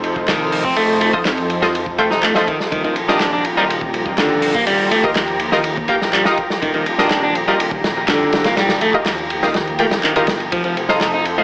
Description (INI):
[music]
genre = breakbeat, breaks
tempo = 123 BPM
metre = 4/4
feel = straight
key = unclear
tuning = A4 = 440 Hz
[part]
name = lush unison pad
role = sustained chords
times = 0.0-11.4 s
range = F3 to Bb5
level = -22 LUFS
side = equal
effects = chorus, sidechain pumping
[part]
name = dark detuned saw bass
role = bass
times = 0.0-11.4 s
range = Eb1 to F2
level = -29 LUFS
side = equal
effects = tube saturation
[part]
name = crunchy breakbeat drum kit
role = drums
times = 0.0-11.4 s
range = hi-hat, kick drum, ride cymbal, snare drum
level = -21 LUFS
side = equal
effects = none
[part]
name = electric guitar at the edge of break-up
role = riff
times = 0.3-11.4 s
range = D3 to Eb4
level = -19 LUFS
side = equal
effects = overdrive, tape echo
[part]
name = electronic handclaps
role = drums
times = 0.3-11.1 s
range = none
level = -20 LUFS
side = equal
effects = none
[part]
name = orchestra-hit-like synth stab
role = stabs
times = 1.1-11.4 s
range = F4 to G5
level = -20 LUFS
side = equal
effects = built-in reverb, tape echo
[sound]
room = moderate studio reverb, RT60 0.6 s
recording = AM radio sound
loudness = -14 LUFS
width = side -23 dB against mid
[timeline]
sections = 0.0-11.4 A section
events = none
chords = 0.0 F7; 2.7 Ebadd9; 10.5 F7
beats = 0.28 | 0.77 1.25 1.74 2.23 | 2.72 3.21 3.69 4.18 | 4.67 5.16 5.65 6.13 | 6.62 7.11 7.60 8.09 | 8.57 9.06 9.55 10.04 | 10.52 11.01